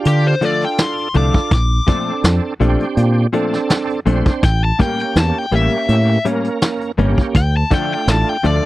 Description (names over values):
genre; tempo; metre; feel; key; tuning
straight-eighth soul blues; 82 BPM; 4/4; swing 54% on 16ths; D minor; A4 = 441 Hz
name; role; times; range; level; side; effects
bright tonewheel organ; accompaniment; 0.0-8.7 s; A3 to C5; -21 LUFS; right 5 dB; slow rotary speaker, overdrive, chorus vibrato
cranked stack guitar; melody; 0.1-8.7 s; G4 to D6; -20 LUFS; left 3 dB; overdrive
fingered electric bass; bass; 0.1-8.6 s; G1 to D3; -15 LUFS; equal; none
vintage brush drum kit; drums; 0.1-8.6 s; hi-hat, kick drum, snare drum; -16 LUFS; equal; none
direct-recorded clean electric guitar; stabs; 0.4-8.7 s; A2 to D4; -19 LUFS; left 4 dB; none
room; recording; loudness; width
little or no reverb; dry, close 1970s-style studio recording; -14 LUFS; side -17 dB against mid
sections
0.0-8.7 A section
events
none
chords
0.0 Dm; 1.5 Bbmaj7; 4.4 A7b9; 7.3 Dm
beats
0.05 0.78 | 1.51 2.24 2.97 3.70 | 4.43 5.16 5.89 6.62 | 7.35 8.08